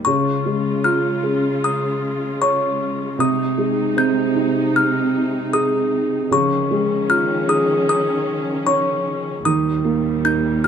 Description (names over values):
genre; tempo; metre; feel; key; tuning
children's music, lullaby; 77 BPM; 4/4; straight; unclear; A4 = 439 Hz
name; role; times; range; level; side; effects
music box; melody; 0.0-10.7 s; Db6 to G6; -22 LUFS; left 4 dB; none
felt-muted upright piano; accompaniment; 0.0-10.7 s; C3 to Db5; -19 LUFS; right 2 dB; none
muted symphonic string section; sustained chords; 0.0-10.7 s; Eb2 to F4; -24 LUFS; left 2 dB; none
room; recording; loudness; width
light reverb; minimal, uncompressed stereo recording; -17 LUFS; side -7 dB against mid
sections
0.0-10.7 A section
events
none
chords
0.1 Db; 3.2 Ab/C; 6.3 Dbadd9; 9.5 Eb